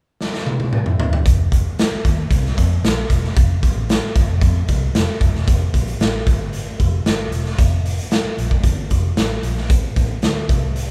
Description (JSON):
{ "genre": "uptempo 1960s-style soul", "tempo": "114 BPM", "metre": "4/4", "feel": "straight", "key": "F major", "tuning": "A4 = 440 Hz", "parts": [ { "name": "raw garage drum kit", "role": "drums", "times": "0.2-10.9 s", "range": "hi-hat, kick drum, snare drum, toms", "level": "-20 LUFS", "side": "equal", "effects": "none" }, { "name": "vintage muted fingered electric bass", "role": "bass", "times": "1.3-10.9 s", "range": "E1 to F2", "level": "-23 LUFS", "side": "equal", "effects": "none" } ], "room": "light reverb", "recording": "band playing live in one room", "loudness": "-18 LUFS", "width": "mono", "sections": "0.0-1.3 A section; 1.3-5.5 B section; 5.5-10.9 C section", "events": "drum fill 0.2-1.3", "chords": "none" }